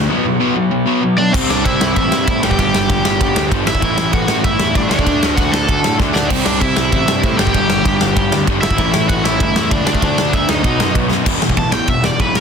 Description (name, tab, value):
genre	punk rock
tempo	194 BPM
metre	4/4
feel	straight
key	E minor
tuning	A4 = 439 Hz
part	overdriven electric guitar	riff	0.0-12.4 s	E2 to D4	-21 LUFS	left 14 dB	none
part	overdriven electric guitar	riff	0.0-12.4 s	E2 to D4	-22 LUFS	right 13 dB	none
part	raw garage guitar	riff	0.0-12.4 s	E2 to D4	-22 LUFS	equal	overdrive
part	fuzz picked electric bass	bass	0.0-12.4 s	E1 to A2	-22 LUFS	equal	overdrive
part	cranked stack guitar	melody	1.2-12.4 s	C4 to A5	-19 LUFS	equal	overdrive, ping-pong delay
part	big rock drum kit	drums	1.3-12.4 s	crash cymbal, kick drum, ride cymbal, snare drum	-17 LUFS	equal	none
room	little or no reverb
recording	dense, heavily limited modern master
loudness	-12 LUFS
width	side -6 dB against mid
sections	0.0-1.3 A section; 1.3-11.3 B section; 11.3-12.4 C section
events	drum fill 6.0-6.3, 11.1; overdriven electric guitar solo 11.3-12.4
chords	0.1 Bm; 1.3 C; 2.4 G5; 3.8 A5; 4.9 D; 6.3 C; 7.4 G5; 8.8 A5; 9.9 D5; 10.6 B; 11.3 E5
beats	| 0.10 0.41 0.72 1.03 | 1.34 1.66 1.97 2.28 | 2.59 2.90 3.21 3.52 | 3.83 4.13 4.44 4.75 | 5.06 5.37 5.68 5.99 | 6.30 6.61 6.92 7.23 | 7.54 7.85 8.16 8.47 | 8.78 9.09 9.40 9.71 | 10.02 10.33 10.64 10.95 | 11.26 11.57 11.88 12.20